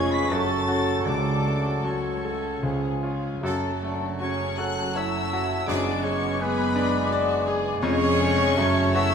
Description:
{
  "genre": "classical, romantic movement for piano and orchestra",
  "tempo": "74-85 BPM",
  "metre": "3/4",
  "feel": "rubato",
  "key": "F# minor",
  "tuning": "A4 = 440 Hz",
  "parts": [
    { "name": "bright concert grand piano", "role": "melody", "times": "0.0-9.1 s", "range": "C#2 to D5", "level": "-28 LUFS", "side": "left 2 dB", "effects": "none" },
    { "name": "warm chamber violin section", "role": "melody", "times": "0.0-9.1 s", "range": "B5 to B6", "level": "-32 LUFS", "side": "left 5 dB", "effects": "none" },
    { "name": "mellow hollow small flute group", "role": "second line", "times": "0.0-9.1 s", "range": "G#5 to D6", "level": "-33 LUFS", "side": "left 2 dB", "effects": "none" },
    { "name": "rich studio violin section", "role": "second line", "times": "0.0-9.1 s", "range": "B3 to A4", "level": "-34 LUFS", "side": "left 4 dB", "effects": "none" },
    { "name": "warm clarinet", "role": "second line", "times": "0.0-9.1 s", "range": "B4 to B5", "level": "-34 LUFS", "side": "left 2 dB", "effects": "none" },
    { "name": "warm oboe", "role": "second line", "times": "0.0-9.1 s", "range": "B4 to B5", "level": "-36 LUFS", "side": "right 1 dB", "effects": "none" },
    { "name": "warm bassoon", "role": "accompaniment", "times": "0.0-9.1 s", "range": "E#3 to A3", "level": "-33 LUFS", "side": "right 3 dB", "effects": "none" },
    { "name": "warm studio viola section", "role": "accompaniment", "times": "0.0-9.1 s", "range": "B3 to B4", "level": "-32 LUFS", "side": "right 2 dB", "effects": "none" },
    { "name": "dark trombone section", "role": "sustained chords", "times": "0.0-9.1 s", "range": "C#3 to A3", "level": "-35 LUFS", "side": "right 3 dB", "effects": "none" },
    { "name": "mellow French horn section", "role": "sustained chords", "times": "0.0-9.1 s", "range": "C#4 to G#4", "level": "-31 LUFS", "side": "left 4 dB", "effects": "none" },
    { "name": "bright trumpet section", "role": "stabs", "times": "0.0-9.1 s", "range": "G#4 to C#5", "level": "-33 LUFS", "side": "right 3 dB", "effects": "none" },
    { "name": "dark studio double bass section", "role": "bass", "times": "0.0-9.1 s", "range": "E#1 to C#2", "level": "-34 LUFS", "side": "right 3 dB", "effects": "none" },
    { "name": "warm studio cello section", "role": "bass", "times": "0.0-9.1 s", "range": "C#2 to F#2", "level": "-34 LUFS", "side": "right 3 dB", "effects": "none" },
    { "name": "timpani", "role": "percussion", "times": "1.1-2.2, 5.7-6.7 s", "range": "F#2 to C#3", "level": "-34 LUFS", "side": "equal", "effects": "none" }
  ],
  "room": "moderate scoring stage reverb, RT60 1.7 s",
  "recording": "none",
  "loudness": "-22 LUFS",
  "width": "side -7 dB against mid",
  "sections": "0.0-9.1 A section",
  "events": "none",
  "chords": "0.3 F#m; 1.1 F#m/C#; 2.6 C#; 3.4 F#m; 5.7 G#m7b5/F#; 7.8 C#/E#; 8.6 F#m"
}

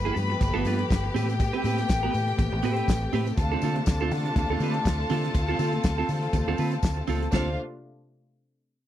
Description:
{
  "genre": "disco",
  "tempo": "122 BPM",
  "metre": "4/4",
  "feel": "swing 56% on 16ths",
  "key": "D dorian",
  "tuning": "A4 = 441 Hz",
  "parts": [
    { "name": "warm studio violin section", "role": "second line", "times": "0.0-7.6 s", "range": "D4 to B5", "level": "-32 LUFS", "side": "left 2 dB", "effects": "none" },
    { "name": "clear symphonic string section", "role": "sustained chords", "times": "0.0-7.6 s", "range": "C3 to G4", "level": "-33 LUFS", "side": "left 3 dB", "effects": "none" },
    { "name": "vintage muted fingered electric bass", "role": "bass", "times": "0.0-7.6 s", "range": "G1 to D3", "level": "-28 LUFS", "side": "equal", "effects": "none" },
    { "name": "clean electric guitar", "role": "accompaniment", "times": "0.1-7.5 s", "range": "B3 to C5", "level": "-30 LUFS", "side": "right 8 dB", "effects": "none" },
    { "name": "congas", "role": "percussion", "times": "0.1-7.6 s", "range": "none", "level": "-37 LUFS", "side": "left 5 dB", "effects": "none" },
    { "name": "tambourine", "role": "percussion", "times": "0.1-7.6 s", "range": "none", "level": "-47 LUFS", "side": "left 21 dB", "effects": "none" },
    { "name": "warm soul drum kit", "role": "drums", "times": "0.2-7.5 s", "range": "hi-hat, kick drum, snare drum, splash cymbal", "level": "-25 LUFS", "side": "equal", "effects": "none" }
  ],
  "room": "little or no reverb",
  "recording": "none",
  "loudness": "-23 LUFS",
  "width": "side -12 dB against mid",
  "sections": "0.0-7.3 A section; 7.3-8.9 B section",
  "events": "none",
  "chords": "0.0 G9; 1.2 Am9; 3.4 Dm7"
}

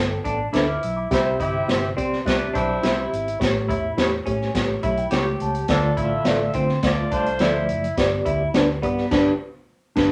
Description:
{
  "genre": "uptempo 1960s-style soul",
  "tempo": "105 BPM",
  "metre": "4/4",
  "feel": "straight",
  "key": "C major",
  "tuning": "A4 = 438 Hz",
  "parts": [
    { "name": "mellow reed electric piano", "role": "accompaniment", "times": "0.0-9.3 s", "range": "G2 to F6", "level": "-28 LUFS", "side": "equal", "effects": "fast tremolo" },
    { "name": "vintage muted fingered electric bass", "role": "bass", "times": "0.0-10.1 s", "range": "F#1 to D3", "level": "-31 LUFS", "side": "equal", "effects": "none" },
    { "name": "electric guitar through a small old amp", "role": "riff", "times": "0.2-9.0 s", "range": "B3 to G4", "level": "-29 LUFS", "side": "equal", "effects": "none" },
    { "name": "swinging big-band drum kit", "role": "drums", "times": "0.3-10.1 s", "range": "crash cymbal, hi-hat, kick drum, snare drum", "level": "-27 LUFS", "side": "equal", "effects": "none" },
    { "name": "mellow electric guitar", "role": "stabs", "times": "0.5-10.1 s", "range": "D4 to D5", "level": "-25 LUFS", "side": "equal", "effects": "none" },
    { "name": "mellow horn section", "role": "second line", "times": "1.1-7.7 s", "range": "F3 to E5", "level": "-28 LUFS", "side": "equal", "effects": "none" }
  ],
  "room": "wet studio ambience, RT60 0.5 s",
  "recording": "none",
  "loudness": "-22 LUFS",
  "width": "mono",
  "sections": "0.0-10.1 A section",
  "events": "reed electric piano fill 4.6-5.7; band accent 9.1-10.1",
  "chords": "0.0 Gadd9; 1.1 C; 3.4 A7; 5.7 Dm; 8.0 G"
}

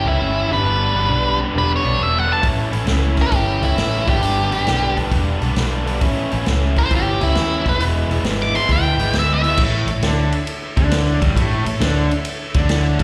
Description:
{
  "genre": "blues rock power trio and southern rock",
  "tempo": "134 BPM",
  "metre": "4/4",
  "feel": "swing 68% on 8ths",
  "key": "A mixolydian",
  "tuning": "A4 = 440 Hz",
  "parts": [
    { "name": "octave-fuzz lead guitar", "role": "melody", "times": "0.0-9.6 s", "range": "E4 to D6", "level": "-22 LUFS", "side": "equal", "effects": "distortion, slapback echo, digital delay" },
    { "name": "raw garage guitar", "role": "riff", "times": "0.0-13.0 s", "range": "G2 to E4", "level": "-24 LUFS", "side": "equal", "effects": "overdrive, slapback echo" },
    { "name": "vintage muted fingered electric bass", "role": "bass", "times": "0.0-13.0 s", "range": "E1 to D#2", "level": "-22 LUFS", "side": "equal", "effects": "none" },
    { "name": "vintage drum kit", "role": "drums", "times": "2.4-13.0 s", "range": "crash cymbal, hi-hat, kick drum, ride cymbal, snare drum", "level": "-24 LUFS", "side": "equal", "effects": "none" },
    { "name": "overdriven tonewheel organ", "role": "sustained chords", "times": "9.6-13.0 s", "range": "E4 to E5", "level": "-33 LUFS", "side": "equal", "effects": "slow rotary speaker, chorus vibrato" }
  ],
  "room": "light reverb",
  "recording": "live gig heard through the venue's PA, recital hall reverb",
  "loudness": "-18 LUFS",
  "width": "mono",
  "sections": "0.0-9.6 A section; 9.6-13.0 B section",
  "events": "none",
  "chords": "0.4 G; 2.4 A; 4.0 G; 6.0 A; 7.6 E; 9.6 A"
}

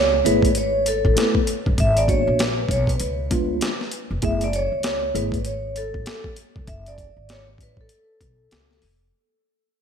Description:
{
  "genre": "hip hop, jazz-hop",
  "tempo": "98 BPM",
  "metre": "4/4",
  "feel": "swing 60% on 16ths",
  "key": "F# minor",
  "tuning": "A4 = 440 Hz",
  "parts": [
    { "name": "vibraphone with medium mallets", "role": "melody", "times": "0.0-8.8 s", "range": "A4 to E5", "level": "-23 LUFS", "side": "right 1 dB", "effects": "tape echo" },
    { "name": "upright bass", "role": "bass", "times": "0.0-9.1 s", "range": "E#1 to D2", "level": "-26 LUFS", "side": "equal", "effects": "none" },
    { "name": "mellow tine electric piano", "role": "accompaniment", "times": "0.2-5.4 s", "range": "G#3 to B4", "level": "-26 LUFS", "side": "equal", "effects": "medium stereo tremolo" },
    { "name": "boom bap sampler-style drum kit", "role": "drums", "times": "0.3-9.0 s", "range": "hi-hat, kick drum, snare drum", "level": "-24 LUFS", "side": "equal", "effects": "none" }
  ],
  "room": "moderate lush hall reverb, RT60 2.3 s",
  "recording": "dreamy mix soaked in reverb",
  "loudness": "-19 LUFS",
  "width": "side -7 dB against mid",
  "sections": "0.0-9.1 A section",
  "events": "fade-out 0.0-9.1",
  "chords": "0.0 F#m11 (rootless); 1.8 G#m7b5; 3.0 C#7b9; 4.2 F#madd9"
}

